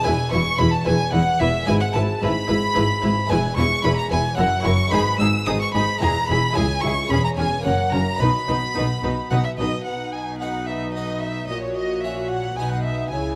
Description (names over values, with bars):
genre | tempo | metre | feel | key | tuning
classical, baroque-style concerto movement with solo episodes | 111 BPM | 3/4 | straight | E major, B major from 3.3 s | A4 = 440 Hz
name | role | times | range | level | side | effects
rich chamber violin section | melody | 0.0-13.4 s | G#4 to E6 | -31 LUFS | equal | none
rich violin | melody | 0.0-13.4 s | C#5 to E6 | -27 LUFS | equal | none
clear chamber violin section | second line | 0.0-13.4 s | G#4 to G#5 | -34 LUFS | equal | none
harpsichord | accompaniment | 0.0-13.4 s | C#2 to D#5 | -31 LUFS | equal | none
rich chamber viola section | accompaniment | 0.1-13.4 s | C#4 to F#4 | -31 LUFS | equal | none
warm chamber double bass section | bass | 0.1-13.4 s | E1 to C#2 | -28 LUFS | equal | none
warm studio cello section | bass | 0.1-13.4 s | C#2 to C#3 | -28 LUFS | equal | none
room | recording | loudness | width
moderate recital hall reverb, RT60 1.7 s | close, detailed microphones, vinyl crackle | -21 LUFS | mono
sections
0.0-9.9 A section; 9.9-13.4 B section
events
none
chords
0.1 E; 1.7 E/G#; 3.3 E; 4.4 F#7; 4.9 G#m; 6.0 E; 6.6 C#m; 7.1 C#m/E; 7.7 F#; 8.2 B; 11.5 F#/A#; 12.6 B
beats
| 0.05 0.60 1.14 | 1.68 2.22 2.76 | 3.30 3.84 4.39 | 4.93 5.47 6.01 | 6.56 7.10 7.65 | 8.21 8.76 9.31 | 9.87 10.41 10.96 | 11.50 12.04 12.59 | 13.13